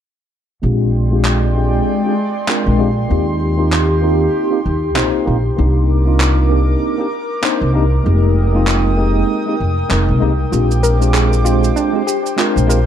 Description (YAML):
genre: sunset chillout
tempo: 97 BPM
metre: 4/4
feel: swing 58% on 16ths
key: unclear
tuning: A4 = 444 Hz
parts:
  - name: bright tine electric piano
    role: accompaniment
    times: 0.6-12.8 s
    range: Ab3 to C5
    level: -18 LUFS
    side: moving between left 5 dB and right 7 dB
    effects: medium stereo tremolo, auto-pan, low-pass filter, ping-pong delay
  - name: airy breathy pad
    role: sustained chords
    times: 0.8-12.9 s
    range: Ab3 to Eb6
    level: -21 LUFS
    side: equal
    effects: chorus
  - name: upright bass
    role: bass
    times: 0.6-12.9 s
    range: F1 to Eb2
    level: -15 LUFS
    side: equal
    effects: none
  - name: electronic handclaps and shaker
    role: drums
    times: 1.2-12.8 s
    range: none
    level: -21 LUFS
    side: right 1 dB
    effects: none
  - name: soft round pluck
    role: arpeggios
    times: 10.5-12.9 s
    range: D4 to Bb4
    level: -20 LUFS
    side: left 1 dB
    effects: chorus, ping-pong delay
room: light reverb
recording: dark, warm production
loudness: -13 LUFS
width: side -9 dB against mid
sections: 0.6-12.9 A section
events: filter sweep on tine electric piano 0.6-12.9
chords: 0.6 Bb13; 3.1 Eb6; 5.6 Cm9; 8.1 Fm11; 10.5 Bb13